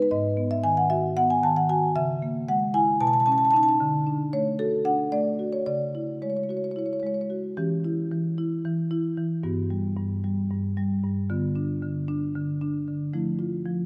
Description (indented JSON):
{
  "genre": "classical, contemporary piece for solo marimba",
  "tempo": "227 BPM (eighths)",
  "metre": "7/8",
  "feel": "rubato",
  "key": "C# minor, E minor from 7.6 s",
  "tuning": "A4 = 440 Hz",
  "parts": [
    { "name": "marimba with medium mallets", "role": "solo", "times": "0.0-13.9 s", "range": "G2 to A5", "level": "-26 LUFS", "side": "equal", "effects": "none" }
  ],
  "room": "wet concert hall reverb, RT60 2.1 s",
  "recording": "none",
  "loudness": "-26 LUFS",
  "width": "mono",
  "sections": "0.0-7.6 A section; 7.6-13.9 B section",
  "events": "none",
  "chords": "0.1 G#m7; 2.0 C#m6; 3.0 B9; 3.8 D; 5.7 C#madd11; 7.6 Em6; 9.4 Gmaj7; 11.3 Dm6; 13.1 Fmaj7",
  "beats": "| 0.12 0.38 0.65 0.91 1.17 1.43 1.70 | 1.96 2.22 2.48 2.75 3.01 3.27 3.54 | 3.80 4.07 4.33 4.59 4.86 5.12 5.39 | 5.67 5.95 6.22 6.50 6.77 7.04 7.31 | 7.58 7.84 8.11 8.38 8.65 8.91 9.18 | 9.44 9.71 9.97 10.24 10.50 10.77 11.03 | 11.29 11.56 11.82 12.08 12.35 12.61 12.87 | 13.13 13.39 13.65"
}